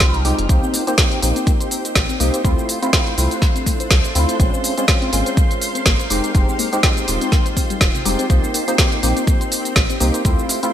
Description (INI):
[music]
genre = deep house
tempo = 123 BPM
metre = 4/4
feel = swing 56% on 16ths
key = unclear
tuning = A4 = 440 Hz
[part]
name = percussive organ stab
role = stabs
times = 0.0-10.7 s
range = Ab3 to G4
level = -22 LUFS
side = equal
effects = ensemble chorus, sidechain pumping, ping-pong delay
[part]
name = warm sub bass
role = bass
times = 0.0-10.3 s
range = Eb1 to D2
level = -20 LUFS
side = equal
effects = sidechain pumping
[part]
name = deep house drum kit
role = drums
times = 0.0-10.7 s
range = hi-hat, shaker, snare drum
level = -20 LUFS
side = equal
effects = studio reverb
[part]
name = electronic kick drum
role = drums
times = 0.0-10.4 s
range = none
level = -17 LUFS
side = equal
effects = studio reverb
[part]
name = granular cloud pad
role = texture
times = 0.1-10.7 s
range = C4 to C6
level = -31 LUFS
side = equal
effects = built-in reverb, analog chorus, sidechain pumping
[part]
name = soft string machine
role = texture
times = 0.0-10.7 s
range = C5 to F6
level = -30 LUFS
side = equal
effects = phaser, ensemble chorus, sidechain pumping
[part]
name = soft round pluck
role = arpeggios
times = 0.6-10.7 s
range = C3 to C5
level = -28 LUFS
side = left 6 dB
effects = chorus, sidechain pumping, digital delay
[sound]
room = light reverb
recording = bright 1980s-style digital production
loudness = -15 LUFS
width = side -10 dB against mid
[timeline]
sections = 0.0-10.7 A section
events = none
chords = 0.5 Cm7; 2.4 Dm7; 4.4 Bbm7; 6.1 Fm7; 8.3 Cm7